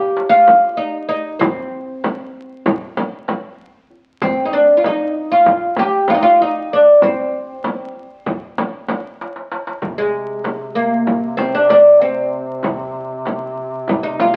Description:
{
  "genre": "Turkish makam ensemble",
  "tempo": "192 BPM (eighths)",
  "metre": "9/8",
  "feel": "straight",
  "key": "C makam nihavent",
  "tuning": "A4 = 440 Hz",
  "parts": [
    { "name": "oud", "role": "melody", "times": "0.0-14.4 s", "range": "Ab3 to G4", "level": "-15 LUFS", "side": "equal", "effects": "none" },
    { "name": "darbuka", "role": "percussion", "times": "0.2-14.3 s", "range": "none", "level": "-32 LUFS", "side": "equal", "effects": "none" },
    { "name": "frame drum", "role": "percussion", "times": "0.5-14.3 s", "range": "none", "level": "-23 LUFS", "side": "equal", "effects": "none" },
    { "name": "warm duduk", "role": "drone", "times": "9.8-14.4 s", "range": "C3", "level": "-29 LUFS", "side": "equal", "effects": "none" }
  ],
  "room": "moderate large studio reverb, RT60 1.1 s",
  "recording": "very old 78 rpm record, vinyl crackle",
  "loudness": "-16 LUFS",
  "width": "mono",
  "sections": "0.0-9.8 A section; 9.8-14.4 B section",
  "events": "drum fill 9.2-9.8",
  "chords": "none",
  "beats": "0.16 0.47 0.79 1.10 | 1.41 1.72 2.03 2.35 2.66 2.97 3.28 3.59 3.90 | 4.22 4.53 4.84 5.15 5.46 5.78 6.09 6.40 6.71 | 7.02 7.33 7.65 7.96 8.27 8.58 8.89 9.20 9.52 | 9.83 10.14 10.45 10.76 11.07 11.39 11.70 12.01 12.32 | 12.63 12.95 13.26 13.57 13.88 14.19"
}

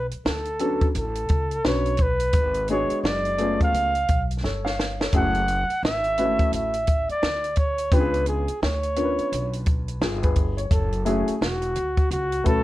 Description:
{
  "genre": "hip hop, jazz-hop",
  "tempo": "86 BPM",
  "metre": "4/4",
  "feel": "swing 62% on 16ths",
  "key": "F# minor",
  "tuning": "A4 = 442 Hz",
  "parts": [
    { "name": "breathy flugelhorn", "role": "melody", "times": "0.0-12.6 s", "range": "F#4 to F#5", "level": "-25 LUFS", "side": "right 1 dB", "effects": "none" },
    { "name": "upright bass", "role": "bass", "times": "0.0-12.6 s", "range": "E1 to D2", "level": "-29 LUFS", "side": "equal", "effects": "none" },
    { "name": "compact cocktail drum kit", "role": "drums", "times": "0.1-12.6 s", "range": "hi-hat, kick drum, snare drum", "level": "-23 LUFS", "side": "equal", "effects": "none" },
    { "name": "dark upright piano", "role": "accompaniment", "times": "0.6-12.6 s", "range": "F#3 to E#5", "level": "-26 LUFS", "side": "left 2 dB", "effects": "none" }
  ],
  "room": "moderate studio reverb, RT60 0.6 s",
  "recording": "cassette tape",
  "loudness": "-21 LUFS",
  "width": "side -16 dB against mid",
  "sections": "0.0-12.6 A section",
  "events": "drum fill 4.4-5.1",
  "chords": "0.0 Bm9; 2.3 G#m7b5; 3.7 C#7b13; 5.1 F#m9; 7.9 C#7b9; 10.7 F#m7",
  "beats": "0.25 0.94 1.64 | 2.34 3.04 3.73 4.43 | 5.13 5.83 6.53 7.22 | 7.92 8.62 9.32 10.01 | 10.71 11.41 12.11"
}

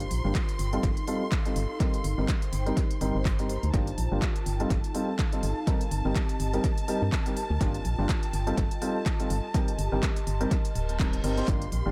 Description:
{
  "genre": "piano house",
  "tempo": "124 BPM",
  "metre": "4/4",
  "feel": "swing 56% on 16ths",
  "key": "unclear",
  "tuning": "A4 = 440 Hz",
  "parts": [
    { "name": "warm studio violin section", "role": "sustained chords", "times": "0.0-11.9 s", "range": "A5 to C6", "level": "-42 LUFS", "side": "equal", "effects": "sidechain pumping" },
    { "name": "organ-like FM bass", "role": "bass", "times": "0.0-11.9 s", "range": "D1 to G2", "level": "-32 LUFS", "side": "equal", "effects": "sidechain pumping" },
    { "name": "house drum kit", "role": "drums", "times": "0.0-11.8 s", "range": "handclaps, hi-hat", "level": "-41 LUFS", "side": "equal", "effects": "tape echo" },
    { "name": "airy breathy pad", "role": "texture", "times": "0.0-11.9 s", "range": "C4 to C6", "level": "-41 LUFS", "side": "equal", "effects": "chorus, sidechain pumping" },
    { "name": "clear grand piano", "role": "riff", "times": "0.2-11.9 s", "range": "G2 to C5", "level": "-34 LUFS", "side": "equal", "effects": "sidechain pumping, low-pass filter, tape echo" },
    { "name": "electronic kick drum", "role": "drums", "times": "0.3-11.6 s", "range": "none", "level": "-30 LUFS", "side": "equal", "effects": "overdrive" },
    { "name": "reverse cymbal", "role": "sound effects", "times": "10.8-11.5 s", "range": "none", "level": "-46 LUFS", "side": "equal", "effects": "none" }
  ],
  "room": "light reverb",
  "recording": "echo-heavy mix",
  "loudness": "-28 LUFS",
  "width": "mono",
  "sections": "0.0-11.9 A section",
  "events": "reverse cymbal 10.8-11.5",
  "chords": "0.0 Gm7; 0.6 F7/G; 1.8 Eb6/G; 2.5 Cm7/G; 3.7 Gm7; 4.5 F7/G; 5.7 Eb6/G; 6.4 Cm7/G; 7.6 Gm7; 8.3 F7/G; 9.5 Eb6/G; 10.3 Cm7",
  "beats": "0.35 0.83 1.32 | 1.80 2.29 2.77 3.25 | 3.74 4.22 4.71 5.19 | 5.67 6.16 6.64 7.12 | 7.61 8.09 8.57 9.06 | 9.54 10.03 10.51 10.99 | 11.48"
}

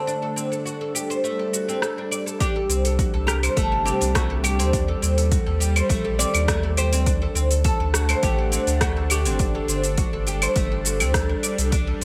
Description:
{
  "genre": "organic downtempo",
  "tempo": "103 BPM",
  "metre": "4/4",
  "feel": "straight",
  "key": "unclear",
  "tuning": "A4 = 440 Hz",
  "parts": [
    { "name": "oud", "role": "melody", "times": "0.0-10.2 s", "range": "F#4 to D5", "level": "-31 LUFS", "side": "equal", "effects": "delay" },
    { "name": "bowed-like drone", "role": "sustained chords", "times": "0.0-12.0 s", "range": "C3 to F#5", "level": "-33 LUFS", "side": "equal", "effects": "built-in reverb, sidechain pumping" },
    { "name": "oud", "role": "arpeggios", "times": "0.0-12.0 s", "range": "A3 to D5", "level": "-29 LUFS", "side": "equal", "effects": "delay" },
    { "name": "deep house drum kit", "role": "drums", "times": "0.1-12.0 s", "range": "cabasa, claves, hi-hat, rim click", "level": "-29 LUFS", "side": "equal", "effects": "overdrive, small room ambience, gated reverb" },
    { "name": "electronic kick drum", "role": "drums", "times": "2.4-11.8 s", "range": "none", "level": "-27 LUFS", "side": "equal", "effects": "overdrive, small room ambience" },
    { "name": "warm sub bass", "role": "bass", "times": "2.7-12.0 s", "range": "G1 to Eb2", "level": "-26 LUFS", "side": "equal", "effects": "sidechain pumping" }
  ],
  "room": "moderate plate reverb, RT60 2.8 s",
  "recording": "bright 1980s-style digital production",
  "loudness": "-22 LUFS",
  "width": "mono",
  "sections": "0.0-2.4 A section; 2.4-12.0 B section",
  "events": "filter sweep on synth drone 0.0-2.4",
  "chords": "0.1 Gsus2; 2.4 Csus2; 4.7 Eb6; 7.1 Gsus2",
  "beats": "| 0.07 0.66 1.24 1.82 | 2.40 2.99 3.57 4.15 | 4.73 5.32 5.90 6.48 | 7.06 7.65 8.23 8.81 | 9.39 9.98 10.56 11.14 | 11.72"
}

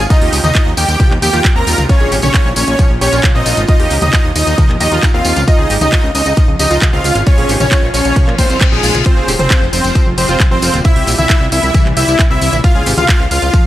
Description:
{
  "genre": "uplifting trance",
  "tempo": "134 BPM",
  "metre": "4/4",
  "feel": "straight",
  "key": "unclear",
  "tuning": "A4 = 440 Hz",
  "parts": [
    { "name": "supersaw chords", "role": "melody", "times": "0.0-13.7 s", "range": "Ab3 to Bb5", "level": "-16 LUFS", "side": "equal", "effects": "analog chorus, sidechain pumping, digital delay" },
    { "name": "clear grand piano", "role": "second line", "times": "0.0-13.7 s", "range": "Ab4 to Bb5", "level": "-23 LUFS", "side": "equal", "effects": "sidechain pumping, digital delay" },
    { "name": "shimmering ambient pad", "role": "sustained chords", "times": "0.0-13.7 s", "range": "Ab2 to G4", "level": "-24 LUFS", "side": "equal", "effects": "none" },
    { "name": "analog pluck", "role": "arpeggios", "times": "0.0-13.6 s", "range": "E3 to F5", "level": "-22 LUFS", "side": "equal", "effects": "chorus, sidechain pumping, digital delay" },
    { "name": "fat analog bass", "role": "bass", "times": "0.0-13.5 s", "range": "Eb1 to Bb2", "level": "-17 LUFS", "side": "equal", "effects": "tube saturation, sidechain pumping" },
    { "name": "electronic kick drum", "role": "drums", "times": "0.1-13.6 s", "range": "none", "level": "-11 LUFS", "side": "equal", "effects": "none" },
    { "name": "house drum kit", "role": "drums", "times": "0.1-13.6 s", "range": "handclaps, hi-hat, toms", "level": "-18 LUFS", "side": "equal", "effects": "none" },
    { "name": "tambourine", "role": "percussion", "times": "0.1-13.6 s", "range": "none", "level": "-22 LUFS", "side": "left 2 dB", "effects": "none" },
    { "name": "reverse cymbal", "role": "sound effects", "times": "8.3-9.1 s", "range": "none", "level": "-21 LUFS", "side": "left 7 dB", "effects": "none" }
  ],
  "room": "digital ambience",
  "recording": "none",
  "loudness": "-9 LUFS",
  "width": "side -14 dB against mid",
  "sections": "0.0-13.7 A section",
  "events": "reverse cymbal 8.3-9.1",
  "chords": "0.1 Eb; 1.9 Bbm; 3.7 Eb; 5.5 Db; 7.3 Bbm; 9.1 Fmadd9; 10.8 C7; 12.6 Db",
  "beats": "| 0.10 0.55 1.00 1.45 | 1.89 2.34 2.79 3.24 | 3.69 4.13 4.58 5.03 | 5.48 5.92 6.37 6.82 | 7.27 7.71 8.16 8.61 | 9.06 9.51 9.95 10.40 | 10.85 11.30 11.74 12.19 | 12.64 13.09 13.54"
}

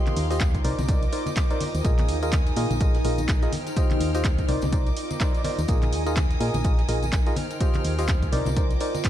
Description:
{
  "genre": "piano house",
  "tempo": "125 BPM",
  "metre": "4/4",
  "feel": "swing 58% on 16ths",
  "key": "Bb mixolydian",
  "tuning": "A4 = 439 Hz",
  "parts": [
    { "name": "rich chamber string section", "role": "sustained chords", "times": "0.0-9.1 s", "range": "G4 to F6", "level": "-36 LUFS", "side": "right 3 dB", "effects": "sidechain pumping" },
    { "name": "percussive organ stab", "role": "riff", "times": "0.0-9.0 s", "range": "Eb4 to Eb5", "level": "-30 LUFS", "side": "equal", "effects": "chorus, sidechain pumping, tape echo" },
    { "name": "granular cloud pad", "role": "texture", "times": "0.0-9.1 s", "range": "Eb4 to Bb5", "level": "-33 LUFS", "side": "equal", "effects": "built-in reverb, sidechain pumping" },
    { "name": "punchy analog drum machine", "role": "drums", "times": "0.1-9.1 s", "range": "handclaps, hi-hat", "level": "-34 LUFS", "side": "right 1 dB", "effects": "none" },
    { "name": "congas and tambourine", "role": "percussion", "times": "0.1-9.1 s", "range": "none", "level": "-34 LUFS", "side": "left 2 dB", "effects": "none" },
    { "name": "solid FM bass", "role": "bass", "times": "0.2-8.8 s", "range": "Bb1 to Bb2", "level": "-27 LUFS", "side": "equal", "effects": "sidechain pumping" },
    { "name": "dusty soul sampler-style drum kit", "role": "drums", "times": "0.2-9.1 s", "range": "hi-hat, snare drum, tambourine", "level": "-42 LUFS", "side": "left 1 dB", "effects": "none" },
    { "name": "electronic kick drum", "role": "drums", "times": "0.4-9.1 s", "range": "none", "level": "-23 LUFS", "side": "equal", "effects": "none" }
  ],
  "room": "little or no reverb",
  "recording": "dark, warm production",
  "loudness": "-21 LUFS",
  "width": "side -12 dB against mid",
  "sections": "0.0-9.1 A section",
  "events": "none",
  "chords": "0.0 Eb69; 0.6 Cm9; 1.8 Bb7sus4; 3.5 Eb69; 4.5 Cm9; 5.7 Bb7sus4; 7.4 Eb69; 8.3 Cm9",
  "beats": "0.41 0.89 1.36 | 1.84 2.33 2.81 3.29 | 3.77 4.25 4.72 5.21 | 5.68 6.17 6.64 7.12 | 7.61 8.09 8.56 9.04"
}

